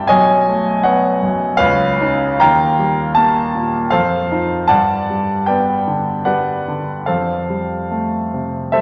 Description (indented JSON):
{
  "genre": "classical, impressionist solo piano",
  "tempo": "77 BPM",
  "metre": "3/4",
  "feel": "uneven beats, rubato",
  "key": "unclear",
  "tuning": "A4 = 440 Hz",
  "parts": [
    { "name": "clear concert grand piano", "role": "solo", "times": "0.0-8.8 s", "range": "B1 to Bb5", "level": "-16 LUFS", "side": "equal", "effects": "none" }
  ],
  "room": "wet concert hall reverb, RT60 2.2 s",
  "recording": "none",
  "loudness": "-16 LUFS",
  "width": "mono",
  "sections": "0.0-8.8 A section",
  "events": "none",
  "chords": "0.1 B9; 1.6 C#9; 2.4 Ebadd9; 3.9 F7; 4.7 Gmaj7; 7.1 Fadd9",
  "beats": "| 0.11 0.86 1.62 | 2.42 3.19 3.95 | 4.72 5.49 6.27 | 7.08 7.91 8.75"
}